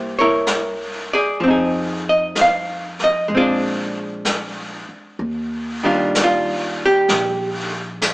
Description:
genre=jazz ballad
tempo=64 BPM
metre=4/4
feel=swing 68% on 8ths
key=Eb major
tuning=A4 = 440 Hz
part: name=archtop guitar, miked and amplified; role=accompaniment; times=0.0-8.1 s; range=Eb3 to F5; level=-17 LUFS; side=equal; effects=none
part: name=upright bass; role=bass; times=0.0-8.1 s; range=Bb1 to F2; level=-31 LUFS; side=equal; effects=none
part: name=vintage brush drum kit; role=drums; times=0.5-8.1 s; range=brushed snare drum, hi-hat, snare drum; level=-24 LUFS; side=equal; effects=none
room=wet stone room reverb, RT60 1.2 s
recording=band playing live in one room, small speaker sound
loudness=-17 LUFS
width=side -21 dB against mid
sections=0.0-5.2 A section; 5.2-8.1 B section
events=none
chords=0.0 C7b9; 1.4 Fm7; 3.3 Bb9; 5.2 Ebmaj9

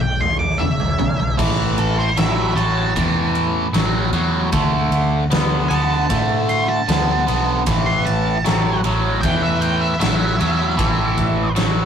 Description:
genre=blues rock power trio and southern rock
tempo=77 BPM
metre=4/4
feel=straight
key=unclear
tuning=A4 = 441 Hz
part: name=octave-fuzz lead guitar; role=melody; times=0.0-11.5 s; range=A4 to D6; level=-24 LUFS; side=right 1 dB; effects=distortion
part: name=biting overdriven guitar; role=riff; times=0.0-11.9 s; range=E2 to B3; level=-20 LUFS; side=right 1 dB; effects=phaser
part: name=vintage muted picked electric bass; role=bass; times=0.0-11.9 s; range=E1 to A2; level=-21 LUFS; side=equal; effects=none
part: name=big rock drum kit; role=drums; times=0.0-11.8 s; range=crash cymbal, kick drum, ride cymbal, snare drum, toms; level=-23 LUFS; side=left 1 dB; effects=none
room=moderate studio reverb, RT60 0.5 s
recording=rough rehearsal-room recording, warm saturation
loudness=-16 LUFS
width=side -8 dB against mid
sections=0.0-1.4 A section; 1.4-11.9 B section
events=drum fill 0.0-1.4; lead electric guitar solo 1.4-11.9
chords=0.0 E5; 1.4 A5; 4.5 D5; 7.7 A5

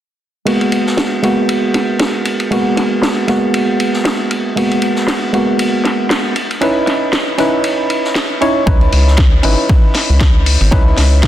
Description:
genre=deep house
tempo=117 BPM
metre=4/4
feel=swing 56% on 16ths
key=G# minor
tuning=A4 = 440 Hz
part: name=percussive organ stab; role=stabs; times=0.5-11.3 s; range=G#3 to C#5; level=-15 LUFS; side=right 1 dB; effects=chorus, sidechain pumping, tape echo
part: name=vintage drum kit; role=drums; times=0.5-11.3 s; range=ride cymbal, snare drum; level=-22 LUFS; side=equal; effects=sidechain pumping on cymbals, high-pass filter on cymbals, high-pass filter on snare, high-pass filter on room
part: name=house drum kit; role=drums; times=1.0-11.3 s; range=hi-hat, snare drum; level=-19 LUFS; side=equal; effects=overdrive, low-pass filter on snare, low-pass filter on hats
part: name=rubbery square bass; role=bass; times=8.7-11.3 s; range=G#1 to C#2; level=-11 LUFS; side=equal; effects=sidechain pumping
part: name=electronic kick drum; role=drums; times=8.7-11.3 s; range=none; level=-11 LUFS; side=equal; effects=overdrive
room=moderate echo chamber reverb, RT60 2.2 s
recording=dense, heavily limited modern master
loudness=-11 LUFS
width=side -12 dB against mid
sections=0.5-11.3 A section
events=filter sweep on drum 0.5-11.3; filter sweep on synth stab 0.5-11.3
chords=0.5 G#m9; 6.4 C#m9

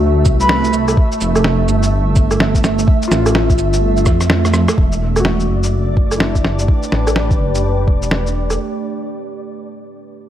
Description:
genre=future garage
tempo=126 BPM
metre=4/4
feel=swing 62% on 16ths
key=E minor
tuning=A4 = 439 Hz
part: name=felt-muted upright piano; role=accompaniment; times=0.0-6.8 s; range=F#3 to F#4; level=-23 LUFS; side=left 6 dB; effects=sidechain pumping, tape echo
part: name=deep dark ambient pad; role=sustained chords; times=0.0-8.6 s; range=A3 to B4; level=-21 LUFS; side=right 4 dB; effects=chorus, built-in reverb, sidechain pumping
part: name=dark detuned saw bass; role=bass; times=0.0-8.6 s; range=E1 to F2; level=-17 LUFS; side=equal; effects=sidechain pumping
part: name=flickering grainy texture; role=texture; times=0.0-8.6 s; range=D5 to E5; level=-27 LUFS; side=right 1 dB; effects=built-in reverb
part: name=electronic cabasa, shaker, snare drum, woodblock and rim click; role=drums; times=0.3-8.6 s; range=none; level=-18 LUFS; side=equal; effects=none
part: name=electronic kick drum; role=drums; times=0.3-8.0 s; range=none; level=-14 LUFS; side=equal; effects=overdrive
part: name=breathy flute-like synth lead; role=melody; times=0.4-0.7 s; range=B5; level=-19 LUFS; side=left 1 dB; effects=lush chorus, tape echo
room=light reverb, digital ambience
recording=none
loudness=-12 LUFS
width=side -11 dB against mid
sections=0.0-4.8 A section; 4.8-8.6 B section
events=drum fill 4.1-4.8; filter sweep on detuned saw bass 4.8-8.6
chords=0.0 Cadd9; 1.0 Fmaj9; 4.8 Em9

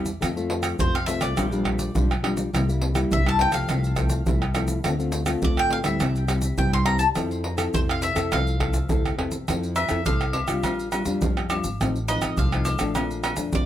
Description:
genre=samba and choro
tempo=104 BPM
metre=4/4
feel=straight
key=F major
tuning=A4 = 440 Hz
part: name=nylon-string guitar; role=accompaniment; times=0.0-13.7 s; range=F2 to A4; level=-27 LUFS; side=left 2 dB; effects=none
part: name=upright bass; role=bass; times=0.0-13.7 s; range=Ab1 to F2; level=-27 LUFS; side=equal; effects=none
part: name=egg shaker, pandeiro, surdo, tamborim and agogo bells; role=percussion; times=0.1-13.7 s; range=none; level=-25 LUFS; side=right 1 dB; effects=none
part: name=bowl-back mandolin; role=melody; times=0.8-13.7 s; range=C5 to C6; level=-27 LUFS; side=left 1 dB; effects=plate reverb, tape echo
room=moderate studio reverb, RT60 0.5 s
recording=none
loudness=-21 LUFS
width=side -11 dB against mid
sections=0.0-9.5 A section; 9.5-13.7 B section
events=mandolin solo 9.5-13.7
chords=0.2 F; 1.4 Bb6; 2.5 C7; 3.7 Fmaj7/C; 4.8 Dm7; 6.0 C; 7.2 Fmaj7; 10.6 Bb6; 11.8 F7/A; 13.0 Bbmaj7

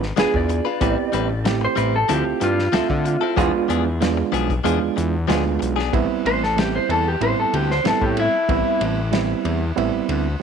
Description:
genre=straight-eighth soul blues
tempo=94 BPM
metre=4/4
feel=straight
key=A minor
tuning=A4 = 440 Hz
part: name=overdriven reed electric piano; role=accompaniment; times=0.0-10.4 s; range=G3 to E5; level=-23 LUFS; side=right 12 dB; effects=none
part: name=fat analog bass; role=bass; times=0.0-10.4 s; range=E1 to D3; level=-23 LUFS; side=left 2 dB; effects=none
part: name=warm soul drum kit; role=drums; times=0.0-10.2 s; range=hi-hat, kick drum, ride cymbal, snare drum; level=-26 LUFS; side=left 2 dB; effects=none
part: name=electric guitar through a small old amp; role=melody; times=0.2-8.8 s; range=E4 to D5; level=-22 LUFS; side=left 1 dB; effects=tape echo
part: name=direct-recorded clean electric guitar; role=stabs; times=0.2-5.9 s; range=F3 to B4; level=-26 LUFS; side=left 13 dB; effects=none
room=light reverb, small room ambience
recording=1960s-style stereo with parts hard left and right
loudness=-18 LUFS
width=side -7 dB against mid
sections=0.0-5.9 A section; 5.9-10.4 A section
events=clean electric guitar solo 0.0-5.9, 5.9-10.4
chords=0.0 E7b9; 0.8 Am9; 2.1 Dm9; 3.4 E7b9; 5.9 Am9

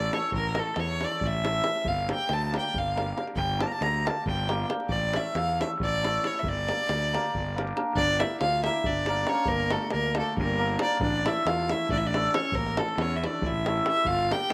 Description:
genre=balkan folk, Balkan wedding band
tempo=275 BPM (eighths)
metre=7/8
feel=straight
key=G dorian sharp4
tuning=A4 = 442 Hz
part: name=clear fiddle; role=melody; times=0.0-14.5 s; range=A4 to Bb5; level=-31 LUFS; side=equal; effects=none
part: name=hammered dulcimer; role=accompaniment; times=0.0-14.5 s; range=A3 to Bb4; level=-35 LUFS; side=equal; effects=slapback echo
part: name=fuzz fingered electric bass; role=bass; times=0.0-14.3 s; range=G1 to E2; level=-34 LUFS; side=equal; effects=overdrive
part: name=davul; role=percussion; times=0.1-14.5 s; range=none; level=-35 LUFS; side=equal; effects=slapback echo
part: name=warm clarinet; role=second line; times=7.9-14.5 s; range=A3 to G4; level=-37 LUFS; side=equal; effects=none
room=light reverb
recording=recorded outdoors, with no room sound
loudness=-27 LUFS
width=mono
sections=0.0-8.0 A section; 8.0-14.5 A section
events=none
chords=0.0 A; 1.9 Gm; 4.9 A; 6.4 Gm; 11.0 A

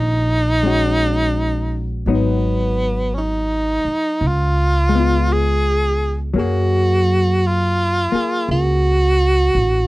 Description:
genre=jazz ballad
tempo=56 BPM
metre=4/4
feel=swing 66% on 8ths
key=unclear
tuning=A4 = 442 Hz
part: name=bright tenor saxophone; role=melody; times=0.0-9.9 s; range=Cb4 to Ab4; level=-19 LUFS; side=right 1 dB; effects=none
part: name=hollow-body jazz guitar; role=accompaniment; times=0.0-9.9 s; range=Eb3 to Ab4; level=-23 LUFS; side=left 4 dB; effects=none
part: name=upright bass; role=bass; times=0.0-9.9 s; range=Ab1 to Gb2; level=-19 LUFS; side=equal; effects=none
room=little or no reverb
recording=dry, close 1970s-style studio recording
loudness=-15 LUFS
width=side -18 dB against mid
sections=0.0-9.9 A section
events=none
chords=0.0 Ebm7; 2.1 Abm7; 4.2 Db7; 6.4 Gbmaj9

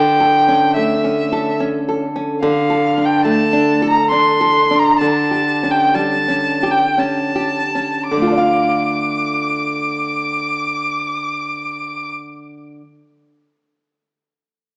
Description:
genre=romantic duo for violin and classical guitar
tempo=50-74 BPM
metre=3/4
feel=rubato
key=D minor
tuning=A4 = 442 Hz
part: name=rich violin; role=melody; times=0.0-12.1 s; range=E5 to D6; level=-19 LUFS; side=equal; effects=none
part: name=nylon-string guitar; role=accompaniment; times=0.0-12.9 s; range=D3 to F5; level=-20 LUFS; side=equal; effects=none
room=wet recital hall reverb, RT60 1.6 s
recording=recorded in a church or concert hall, small speaker sound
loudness=-17 LUFS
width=mono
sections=0.0-8.1 A section; 8.1-11.4 B section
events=slowing down 1.2-8.1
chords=0.0 A7/D; 2.4 D5; 5.0 A7/D; 8.1 Dm

